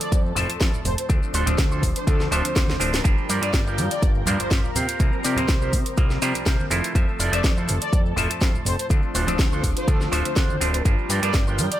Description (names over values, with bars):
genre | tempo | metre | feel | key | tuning
filtered disco house | 123 BPM | 4/4 | swing 53% on 16ths | G dorian | A4 = 440 Hz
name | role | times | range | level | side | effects
analog synth brass | melody | 0.0-11.8 s | A4 to D5 | -31 LUFS | left 1 dB | chorus, sidechain pumping, ping-pong delay
auto-wah clav | accompaniment | 0.0-11.8 s | F3 to E5 | -28 LUFS | equal | phaser, sidechain pumping
string machine, full ensemble | sustained chords | 0.0-11.8 s | C4 to G5 | -32 LUFS | left 1 dB | ensemble chorus, sidechain pumping
house drum kit | drums | 0.0-11.8 s | hi-hat, shaker, snare drum | -27 LUFS | left 1 dB | sidechain pumping on hats, sidechain pumping on perc
maracas and congas | percussion | 0.0-11.8 s | none | -32 LUFS | right 3 dB | sidechain pumping on perc
electric guitar with an envelope filter | riff | 0.1-11.7 s | D4 to D5 | -30 LUFS | right 4 dB | sidechain pumping
fat analog bass | bass | 0.1-11.7 s | D1 to C3 | -26 LUFS | equal | sidechain pumping
electronic kick drum | drums | 0.1-11.4 s | none | -21 LUFS | equal | none
room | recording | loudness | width
little or no reverb | none | -19 LUFS | side -13 dB against mid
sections
0.0-11.8 A section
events
drum fill 2.7-3.0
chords
0.0 Fmaj7; 1.1 Dm7; 3.0 Gm7; 4.8 C7sus4; 6.7 Fmaj7; 8.9 Dm7; 10.9 Gm7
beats
0.12 0.61 | 1.10 1.58 2.07 2.56 | 3.05 3.54 4.02 4.51 | 5.00 5.49 5.98 6.46 | 6.95 7.44 7.93 8.41 | 8.90 9.39 9.88 10.37 | 10.85 11.34